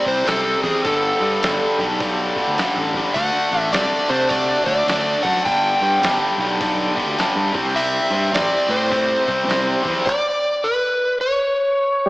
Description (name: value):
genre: blues rock power trio and southern rock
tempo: 104 BPM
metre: 4/4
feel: swing 63% on 8ths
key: unclear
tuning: A4 = 441 Hz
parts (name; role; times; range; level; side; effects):
- overdriven slide guitar; melody; 0.0-12.1 s; G#4 to G5; -20 LUFS; equal; none
- biting overdriven guitar; riff; 0.0-10.1 s; G2 to D4; -20 LUFS; equal; none
- fuzz fingered electric bass; bass; 0.1-9.9 s; G1 to C3; -27 LUFS; equal; overdrive
- lo-fi sampler-style drum kit; drums; 0.1-10.2 s; handclaps, hi-hat, kick drum, snare drum; -26 LUFS; equal; overdrive
- overdriven tonewheel organ; sustained chords; 12.1 s; G3; -15 LUFS; right 1 dB; slow rotary speaker, chorus vibrato
room: moderate lush hall reverb, RT60 2.5 s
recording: big arena sound, small speaker sound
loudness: -16 LUFS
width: side -19 dB against mid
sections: 0.0-12.1 A section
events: none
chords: 0.0 C5; 0.9 G; 3.2 D; 5.5 G; 7.5 C; 10.1 N.C.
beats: 0.28 | 0.85 1.43 2.00 2.58 | 3.15 3.73 4.30 4.88 | 5.46 6.03 6.61 7.18 | 7.76 8.34 8.91 9.49 | 10.06 10.64 11.21 11.79